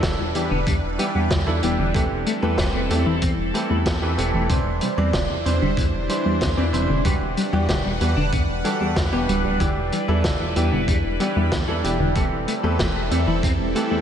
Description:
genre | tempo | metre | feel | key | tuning
synthwave | 94 BPM | 4/4 | straight | E minor | A4 = 440 Hz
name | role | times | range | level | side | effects
phased analog pad | sustained chords | 0.0-14.0 s | G3 to F#5 | -27 LUFS | equal | phaser, chorus, sidechain pumping
soft round pluck | arpeggios | 0.0-14.0 s | D3 to C4 | -27 LUFS | left 1 dB | chorus, tape echo
clean electric guitar | riff | 0.0-14.0 s | C3 to A4 | -30 LUFS | left 2 dB | ensemble chorus, tape echo, slapback echo
bright grand piano | stabs | 0.0-14.0 s | E3 to D5 | -27 LUFS | right 2 dB | tape echo, slapback echo
chorused synth bass | bass | 0.0-14.0 s | D1 to E2 | -24 LUFS | equal | sidechain pumping
electronic kick drum | drums | 0.0-13.6 s | none | -25 LUFS | equal | none
vintage drum kit | drums | 0.0-13.9 s | hi-hat, snare drum | -29 LUFS | equal | slapback echo
room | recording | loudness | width
moderate lush hall reverb, RT60 2.5 s | big arena sound, nothing above 10.7 kHz | -19 LUFS | side -8 dB against mid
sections
0.0-14.0 A section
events
none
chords
0.0 Em7; 1.9 Am7/E; 4.5 Cadd9/E; 7.1 Gmaj7/E; 9.6 Em7; 12.2 Am7/E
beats
0.03 0.67 1.31 | 1.95 2.58 3.22 3.86 | 4.50 5.14 5.78 6.41 | 7.05 7.69 8.33 8.97 | 9.60 10.24 10.88 11.52 | 12.16 12.80 13.43

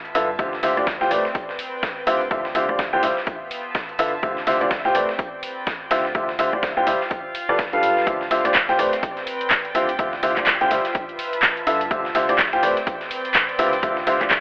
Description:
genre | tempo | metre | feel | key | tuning
piano house | 125 BPM | 4/4 | swing 59% on 16ths | D dorian | A4 = 437 Hz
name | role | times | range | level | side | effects
clear studio string section | texture | 0.0-14.4 s | B3 to A5 | -29 LUFS | equal | sidechain pumping
clear upright piano | riff | 0.1-14.3 s | D3 to G5 | -20 LUFS | equal | sidechain pumping, analog delay
organ-like FM bass | bass | 0.1-14.4 s | G1 to G2 | -38 LUFS | equal | sidechain pumping
dusty soul sampler-style drum kit | drums | 0.1-14.4 s | hi-hat, snare drum | -31 LUFS | equal | high-pass filter on snare, sidechain pumping on hats, high-pass filter on hats, high-pass filter on room
punchy analog drum machine | drums | 0.1-14.4 s | handclaps, hi-hat | -22 LUFS | equal | none
electronic kick drum | drums | 0.4-14.4 s | none | -26 LUFS | equal | none
room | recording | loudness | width
light reverb | echo-heavy mix, telephone sound | -18 LUFS | side -24 dB against mid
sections
0.0-14.4 A section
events
fade-in on string section 0.0-14.4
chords
0.4 Dm11; 1.1 Am11; 2.1 Dm11; 3.3 G13; 4.2 Dm11; 5.0 Am11; 5.9 Dm11; 7.1 G9; 8.1 Dm11; 8.8 Am11; 9.8 Dm11; 10.9 G13; 11.9 Dm11; 12.6 Am11; 13.6 Dm11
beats
| 0.39 0.87 1.35 1.83 | 2.31 2.79 3.27 3.75 | 4.23 4.71 5.19 5.67 | 6.15 6.63 7.11 7.59 | 8.07 8.55 9.03 9.51 | 9.99 10.47 10.95 11.43 | 11.91 12.39 12.87 13.35 | 13.83 14.31

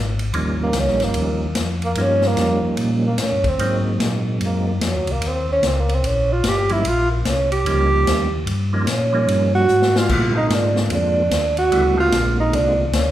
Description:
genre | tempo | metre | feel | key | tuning
soul jazz organ trio | 148 BPM | 4/4 | swing 64% on 8ths | Eb mixolydian | A4 = 440 Hz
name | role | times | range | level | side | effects
mellow tonewheel organ | bass | 0.0-13.1 s | G1 to Bb2 | -21 LUFS | left 1 dB | chorus vibrato, slow rotary speaker
swinging big-band drum kit | drums | 0.2-13.1 s | crash cymbal, hi-hat, kick drum, ride cymbal, snare drum | -26 LUFS | left 2 dB | none
percussive tonewheel organ | melody | 0.3-12.9 s | Db3 to F4 | -24 LUFS | right 2 dB | slow rotary speaker, chorus vibrato
breathy tenor saxophone | melody | 0.6-13.1 s | Eb3 to G4 | -20 LUFS | right 2 dB | none
room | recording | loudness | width
wet recital hall reverb, RT60 1.4 s | recorded in a church or concert hall | -16 LUFS | side -13 dB against mid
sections
0.0-13.1 A section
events
tenor saxophone solo 0.0-13.1; drum fill 9.7-10.1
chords
0.3 Eb9; 3.6 Ab9; 5.2 Eb9; 10.1 Bb9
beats
| 0.34 0.75 1.15 1.56 | 1.97 2.37 2.78 3.19 | 3.59 4.00 4.41 4.81 | 5.22 5.62 6.03 6.44 | 6.84 7.25 7.66 8.06 | 8.47 8.88 9.28 9.69 | 10.10 10.50 10.91 11.32 | 11.72 12.13 12.54 12.95

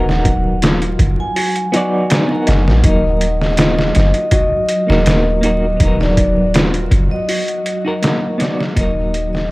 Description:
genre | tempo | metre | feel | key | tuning
trip hop | 81 BPM | 4/4 | straight | unclear | A4 = 440 Hz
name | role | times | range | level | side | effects
vibraphone with medium mallets | melody | 0.0-9.5 s | D5 to Ab5 | -20 LUFS | equal | tape echo
semi-hollow electric guitar | accompaniment | 0.0-9.5 s | F#3 to D5 | -21 LUFS | right 1 dB | tremolo, vintage 12-bit sampler grit, tape echo
felt-muted upright piano | arpeggios | 0.0-9.5 s | Bb3 to D#5 | -25 LUFS | left 1 dB | analog delay
soft 808-style bass | bass | 0.0-9.5 s | D#1 to A#1 | -16 LUFS | equal | tube saturation
wind-like tuned noise texture | texture | 0.1-9.5 s | Gb3 | -28 LUFS | equal | none
trip hop sampler-style drum kit | drums | 0.1-9.5 s | hi-hat, kick drum, snare drum | -16 LUFS | equal | overdrive
string machine, cellos | sustained chords | 2.8-9.5 s | Gb3 to Gb4 | -26 LUFS | equal | ensemble chorus
room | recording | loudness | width
digital ambience | dry, gritty hardware recording, vinyl crackle | -12 LUFS | side -21 dB against mid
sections
0.0-9.5 A section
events
fade-out 6.8-9.5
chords
0.0 Bmaj7/D#; 2.8 Ebm; 5.8 Bmaj7/D#; 8.8 Ebm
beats
0.62 1.36 2.10 | 2.84 3.58 4.33 5.07 | 5.81 6.55 7.29 8.03 | 8.77 9.51

